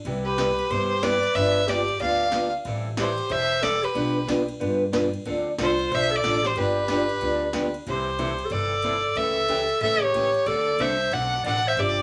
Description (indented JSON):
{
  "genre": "country, western swing",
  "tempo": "184 BPM",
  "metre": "4/4",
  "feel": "swing 63% on 8ths",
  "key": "C major",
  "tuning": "A4 = 441 Hz",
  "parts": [
    { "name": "upright bass", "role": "bass", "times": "0.0-12.0 s", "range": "E1 to A2", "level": "-35 LUFS", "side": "equal", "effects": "none" },
    { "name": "electro analog drum machine", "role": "drums", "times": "0.0-11.9 s", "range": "hi-hat, kick drum, ride cymbal, snare drum", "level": "-40 LUFS", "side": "equal", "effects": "none" },
    { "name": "picked acoustic archtop guitar", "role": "accompaniment", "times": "0.1-12.0 s", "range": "B2 to B4", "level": "-30 LUFS", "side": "equal", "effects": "none" },
    { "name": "clear fiddle", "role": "melody", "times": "0.2-12.0 s", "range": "B4 to F#5", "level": "-27 LUFS", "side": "equal", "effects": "none" },
    { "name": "breathy clarinet", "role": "second line", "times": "0.2-12.0 s", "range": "F4 to D5", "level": "-30 LUFS", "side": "equal", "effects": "none" }
  ],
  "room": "wet studio ambience, RT60 0.5 s",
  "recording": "none",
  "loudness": "-24 LUFS",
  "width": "mono",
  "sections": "0.0-7.9 A section; 7.9-12.0 B section",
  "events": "none",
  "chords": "0.0 Cmaj7; 1.4 G7; 2.7 Am7; 4.0 G7/B; 5.3 Dm7; 6.6 G7; 7.9 C6; 9.2 A7/C#; 10.5 D7",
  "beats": "| 0.05 0.37 0.70 1.02 | 1.35 1.68 2.00 2.33 | 2.65 2.98 3.31 3.63 | 3.96 4.28 4.61 4.94 | 5.26 5.59 5.91 6.24 | 6.56 6.89 7.21 7.54 | 7.87 8.19 8.52 8.84 | 9.17 9.49 9.82 10.15 | 10.47 10.80 11.12 11.45 | 11.77"
}